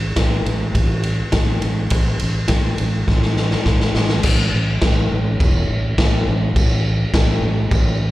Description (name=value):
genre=garage rock duo or trio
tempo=103 BPM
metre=4/4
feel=straight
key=unclear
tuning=A4 = 440 Hz
part: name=fretless electric bass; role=bass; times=0.0-8.1 s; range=E1 to A1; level=-19 LUFS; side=equal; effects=tube saturation
part: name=raw garage drum kit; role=drums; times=0.2-7.9 s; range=crash cymbal, kick drum, ride cymbal, snare drum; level=-18 LUFS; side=equal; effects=none
room=little or no reverb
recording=live gig heard through the venue's PA, club reverb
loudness=-15 LUFS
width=side -16 dB against mid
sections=0.0-4.2 A section; 4.2-8.1 B section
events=drum fill 3.1-4.2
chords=none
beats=0.17 0.75 1.34 | 1.92 2.50 3.08 3.66 | 4.25 4.83 5.41 5.99 | 6.57 7.15 7.73